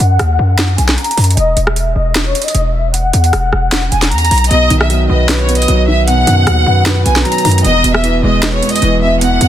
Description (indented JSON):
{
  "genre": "hip hop, trap",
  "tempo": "153 BPM",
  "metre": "4/4",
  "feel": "half-time",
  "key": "B major",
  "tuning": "A4 = 440 Hz",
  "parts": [
    { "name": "rich studio violin section", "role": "melody", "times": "0.0-9.5 s", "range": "C#5 to A#5", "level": "-15 LUFS", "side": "left 1 dB", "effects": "low-pass filter, tape echo" },
    { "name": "hard-hitting 808-style bass", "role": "bass", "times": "0.0-9.5 s", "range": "E1 to F#2", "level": "-13 LUFS", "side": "equal", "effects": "none" },
    { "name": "trap drum kit", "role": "drums", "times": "0.0-9.5 s", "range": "hi-hat, rim click, snare drum", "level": "-17 LUFS", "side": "right 1 dB", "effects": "none" },
    { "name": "dark grand piano", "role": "accompaniment", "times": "4.5-9.5 s", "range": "E2 to B4", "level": "-15 LUFS", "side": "right 2 dB", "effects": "low-pass filter" }
  ],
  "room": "small room reverb",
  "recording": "dense, heavily limited modern master",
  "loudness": "-10 LUFS",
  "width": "side -11 dB against mid",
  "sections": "0.0-9.5 A section",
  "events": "filter sweep 0.0-4.5",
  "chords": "0.0 B; 1.4 E5; 4.5 B; 7.6 E"
}